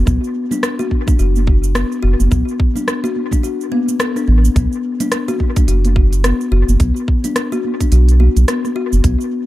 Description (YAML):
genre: organic downtempo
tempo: 107 BPM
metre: 4/4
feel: swing 59% on 16ths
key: B minor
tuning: A4 = 441 Hz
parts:
  - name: round analog bass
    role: bass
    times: 0.0-9.2 s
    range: F#1 to B1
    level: -12 LUFS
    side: equal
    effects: none
  - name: kalimba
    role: arpeggios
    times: 0.1-9.2 s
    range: B3 to A4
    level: -20 LUFS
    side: left 4 dB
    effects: dub echo
  - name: deep house drum kit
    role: drums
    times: 0.1-9.3 s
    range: hi-hat, rim click, shaker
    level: -23 LUFS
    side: equal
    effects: dub echo
  - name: electronic kick drum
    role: drums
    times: 0.1-9.2 s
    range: none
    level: -15 LUFS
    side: equal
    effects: none
  - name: congas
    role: percussion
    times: 0.1-9.2 s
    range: none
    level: -26 LUFS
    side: right 5 dB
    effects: dub echo
room: light reverb, digital ambience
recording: echo-heavy mix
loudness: -13 LUFS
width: side -16 dB against mid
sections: 0.0-9.5 A section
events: none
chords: 0.1 F#sus4; 4.6 Bm